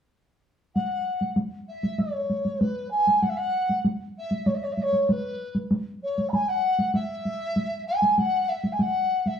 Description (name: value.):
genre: japanese traditional, taiko drum ensemble.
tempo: 97 BPM.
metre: 4/4.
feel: straight.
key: F# suspended pentatonic.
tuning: A4 = 440 Hz.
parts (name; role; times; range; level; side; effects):
mellow large dizi; melody; 0.7-9.4 s; B4 to B5; -24 LUFS; equal; none.
solo taiko drums; percussion; 0.8-9.4 s; none; -26 LUFS; equal; none.
room: wet studio reverb, RT60 0.9 s.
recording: band playing live in one room.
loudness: -23 LUFS.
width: side -8 dB against mid.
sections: 0.8-9.4 A section.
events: none.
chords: none.